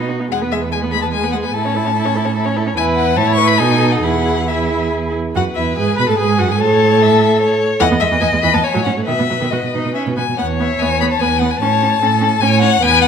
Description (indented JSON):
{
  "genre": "quick classical-period movement for string quartet",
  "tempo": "135-151 BPM",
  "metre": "3/4",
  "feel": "rubato",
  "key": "E major",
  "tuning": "A4 = 438 Hz",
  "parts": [
    { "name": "rich violin", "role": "melody", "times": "0.0-13.1 s", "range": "D#5 to C#6", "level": "-18 LUFS", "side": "left 9 dB", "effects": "none" },
    { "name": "warm violin", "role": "second line", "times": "0.0-13.1 s", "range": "D#4 to E5", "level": "-22 LUFS", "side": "left 2 dB", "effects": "none" },
    { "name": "warm viola", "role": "accompaniment", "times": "0.0-13.1 s", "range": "D#3 to B4", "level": "-19 LUFS", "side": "right 2 dB", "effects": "none" },
    { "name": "rich cello", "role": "bass", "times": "0.0-13.1 s", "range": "E2 to B2", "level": "-18 LUFS", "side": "right 5 dB", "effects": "none" }
  ],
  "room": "wet recital hall reverb, RT60 1.4 s",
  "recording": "none",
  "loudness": "-13 LUFS",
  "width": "side -7 dB against mid",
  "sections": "0.0-5.4 A section; 5.4-13.1 B section",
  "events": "none",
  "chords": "0.3 E; 1.6 A; 2.8 E5; 3.2 A; 3.6 B7; 4.0 E; 6.6 A; 7.8 E5; 8.6 A; 9.1 B; 10.4 E5; 11.6 A"
}